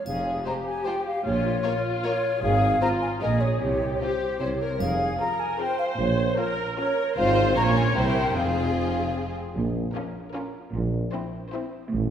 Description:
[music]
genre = cinematic, playful, whimsical film cue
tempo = 152 BPM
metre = 3/4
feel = straight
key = F minor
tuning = A4 = 439 Hz
[part]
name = mellow silver concert flute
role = second line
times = 0.0-9.1 s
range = C5 to Bb5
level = -27 LUFS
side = left 1 dB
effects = none
[part]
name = clear studio viola section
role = accompaniment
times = 0.1-11.8 s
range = C4 to Db5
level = -30 LUFS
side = equal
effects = none
[part]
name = clear studio double bass section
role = bass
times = 0.1-12.1 s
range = F1 to C2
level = -30 LUFS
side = right 2 dB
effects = none
[part]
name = rich studio cello section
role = bass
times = 0.1-12.1 s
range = F2 to C3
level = -32 LUFS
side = right 2 dB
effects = none
[part]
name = warm tuba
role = bass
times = 0.1-12.1 s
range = F1 to C2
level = -32 LUFS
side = right 1 dB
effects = none
[part]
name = triangle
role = percussion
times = 0.1-0.8, 4.8-5.6 s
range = none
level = -46 LUFS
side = right 1 dB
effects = none
[part]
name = rich studio violin section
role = melody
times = 0.5-11.8 s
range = G4 to Db5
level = -35 LUFS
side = left 3 dB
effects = none
[part]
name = rich studio violin section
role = second line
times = 0.5-11.8 s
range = Ab3 to F4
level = -33 LUFS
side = left 3 dB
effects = none
[sound]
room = wet scoring stage reverb, RT60 1.7 s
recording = heard from further back in the room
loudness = -23 LUFS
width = side -9 dB against mid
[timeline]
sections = 0.1-9.5 A section; 9.5-12.1 B section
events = none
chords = 0.1 Fm; 1.2 Bbm; 2.4 Fm/Ab; 3.2 Bbm7; 3.6 C5; 4.8 Fm; 6.0 Bbm; 7.2 Fm/Ab; 7.6 Bbm; 7.9 C7; 8.3 Fm; 9.5 Bbm; 10.7 C7/Bb

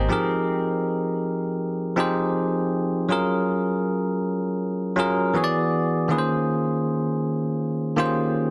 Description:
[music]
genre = R&B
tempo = 80 BPM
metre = 4/4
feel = swing 58% on 16ths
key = unclear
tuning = A4 = 439 Hz
[part]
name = bell-like tine electric piano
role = accompaniment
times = 0.0-8.5 s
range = Ab2 to Bb5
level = -24 LUFS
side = equal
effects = none
[part]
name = direct-recorded clean electric guitar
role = arpeggios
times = 0.0-0.7 s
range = Ab3 to Bb4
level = -38 LUFS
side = equal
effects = tremolo, tape echo
[sound]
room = light reverb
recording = dense, heavily limited modern master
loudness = -24 LUFS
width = mono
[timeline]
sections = 0.1-8.5 A section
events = none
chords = 0.1 Fm11; 3.1 Gbmaj9; 5.3 E9; 6.1 Eb13sus4

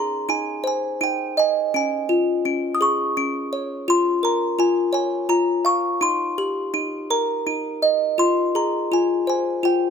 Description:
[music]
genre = children's music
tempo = 56 BPM (dotted quarters)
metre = 6/8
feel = rubato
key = Ab major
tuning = A4 = 440 Hz
[part]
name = music box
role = solo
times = 0.0-9.9 s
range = Db4 to Eb6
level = -19 LUFS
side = equal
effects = none
[sound]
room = light reverb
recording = close, detailed microphones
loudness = -19 LUFS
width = side -6 dB against mid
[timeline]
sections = 0.0-9.9 A section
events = none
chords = 0.0 Ab; 1.7 Db; 3.9 Bbm; 6.0 Eb; 8.2 Fm

